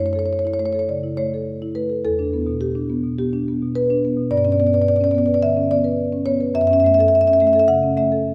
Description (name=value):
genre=classical, contemporary piece for solo marimba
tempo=105 BPM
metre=4/4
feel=rubato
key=unclear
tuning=A4 = 438 Hz
part: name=marimba with soft mallets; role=solo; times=0.0-8.3 s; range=E2 to F#5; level=-19 LUFS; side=equal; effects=none
room=wet recital hall reverb, RT60 1.6 s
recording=none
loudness=-19 LUFS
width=mono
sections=0.0-8.3 A section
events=none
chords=0.0 F#m7; 2.0 Em7; 4.3 G; 6.6 F#m7